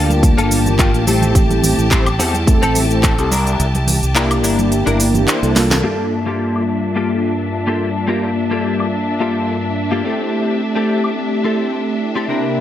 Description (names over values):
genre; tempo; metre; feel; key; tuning
nu-disco, nu disco; 107 BPM; 4/4; swing 54% on 16ths; G dorian; A4 = 439 Hz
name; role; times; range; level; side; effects
mellow synth brass; accompaniment; 0.0-12.6 s; G2 to A5; -18 LUFS; equal; chorus, sidechain pumping, analog delay
clear symphonic string section; sustained chords; 0.0-12.6 s; D4 to A5; -25 LUFS; left 1 dB; sidechain pumping, low-pass filter
direct-recorded clean electric guitar; riff; 0.0-12.6 s; Bb3 to C5; -22 LUFS; left 3 dB; ensemble chorus, low-pass filter, analog delay
fingered electric bass; bass; 0.0-5.8 s; G1 to E2; -18 LUFS; equal; none
house drum kit; drums; 0.1-12.6 s; crash cymbal, handclaps, hi-hat, shaker, snare drum, woodblock; -21 LUFS; equal; low-pass filter on hats, low-pass filter on perc, low-pass filter on snare, low-pass filter on cymbals
congas; percussion; 0.1-5.8 s; none; -26 LUFS; right 3 dB; none
electronic kick drum; drums; 0.2-3.2 s; none; -14 LUFS; equal; none
room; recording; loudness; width
light reverb; none; -14 LUFS; side -11 dB against mid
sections
0.0-5.8 A section; 5.8-12.6 B section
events
kick drops out 3.6-5.8; drum fill 5.6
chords
0.0 Gm9; 1.1 Am7; 3.3 C9; 5.8 Gm9; 10.0 Am7